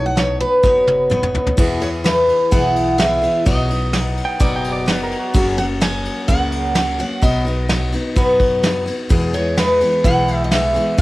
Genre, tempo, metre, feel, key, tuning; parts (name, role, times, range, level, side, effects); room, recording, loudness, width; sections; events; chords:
honky-tonk and classic country; 128 BPM; 4/4; straight; E major; A4 = 444 Hz
picked steel-string acoustic guitar; melody; 0.0-11.0 s; B4 to G#5; -18 LUFS; equal; cassette tape
picked steel-string acoustic guitar; accompaniment; 0.0-11.0 s; E2 to C#5; -22 LUFS; left 2 dB; cassette tape
upright bass; bass; 0.0-11.0 s; F#1 to F#2; -24 LUFS; equal
soft brush drum kit; drums; 0.2-11.0 s; crash cymbal, hi-hat, kick drum, ride cymbal, snare drum, toms; -20 LUFS; equal; cassette tape
pedal steel guitar; second line; 4.2-5.5 s; F#4 to G5; -25 LUFS; right 3 dB; cassette tape
light reverb, small room ambience; home recording on cassette; -14 LUFS; side -18 dB against mid
0.0-1.6 A section; 1.6-11.0 B section
steel-string acoustic guitar solo 0.0-1.6; drum fill 0.6-1.6
0.0 Badd9; 1.6 E; 3.5 B; 5.3 F#; 7.2 B; 9.1 E